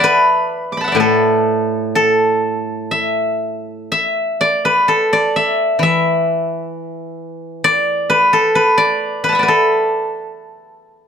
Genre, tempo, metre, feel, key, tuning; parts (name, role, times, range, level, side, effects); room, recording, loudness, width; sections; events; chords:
chinese traditional, Chinese solo plucked strings; 59-67 BPM; 2/4; rubato; A zhi mode; A4 = 441 Hz
steel-string zither; solo; 0.0-11.1 s; A2 to D6; -13 LUFS; equal
light reverb; -13 LUFS; side -7 dB against mid
0.0-11.1 A section